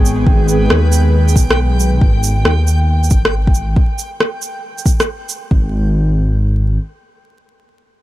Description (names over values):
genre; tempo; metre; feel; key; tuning
future garage; 137 BPM; 4/4; swing 66% on 16ths; G# harmonic minor; A4 = 440 Hz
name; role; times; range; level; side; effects
clean electric guitar; accompaniment; 0.0-0.6 s; G#4; -32 LUFS; left 2 dB; sidechain pumping, low-pass filter, dub echo
airy breathy pad; sustained chords; 0.0-2.0 s; D#3 to B4; -20 LUFS; equal; chorus, sidechain pumping
dark detuned saw bass; bass; 0.0-6.8 s; G#1 to D#2; -13 LUFS; equal; sidechain pumping
backwards swelling texture; texture; 0.0-3.8 s; G5; -27 LUFS; right 1 dB; built-in reverb
electronic shaker and rim click; drums; 0.1-5.4 s; none; -18 LUFS; right 1 dB; none
electronic kick drum; drums; 0.3-5.6 s; none; -13 LUFS; equal; none
room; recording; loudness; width
little or no reverb; vinyl crackle; -12 LUFS; side -16 dB against mid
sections
0.0-5.5 A section; 5.5-8.0 B section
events
filter sweep on detuned saw bass 0.0-3.8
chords
0.0 G#m; 5.5 N.C.